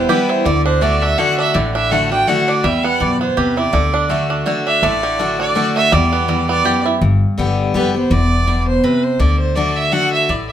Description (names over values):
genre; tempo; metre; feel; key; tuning
bluegrass; 165 BPM; 3/4; swing 56% on 8ths; unclear; A4 = 440 Hz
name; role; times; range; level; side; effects
clear fiddle; melody; 0.0-10.5 s; B4 to G5; -18 LUFS; right 2 dB; none
picked steel-string acoustic guitar; accompaniment; 0.0-10.5 s; E2 to G4; -18 LUFS; left 2 dB; none
bluegrass banjo; arpeggios; 0.0-7.0 s; D3 to G4; -19 LUFS; right 4 dB; none
upright bass; bass; 0.0-10.5 s; E1 to F#2; -19 LUFS; left 1 dB; none
room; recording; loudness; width
moderate studio reverb, RT60 0.8 s; minimal, uncompressed stereo recording; -13 LUFS; side -10 dB against mid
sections
0.0-7.0 A section; 7.0-10.5 A section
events
none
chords
0.5 D; 2.6 Em; 3.7 D; 5.9 Em; 7.0 G; 8.1 E5; 9.2 D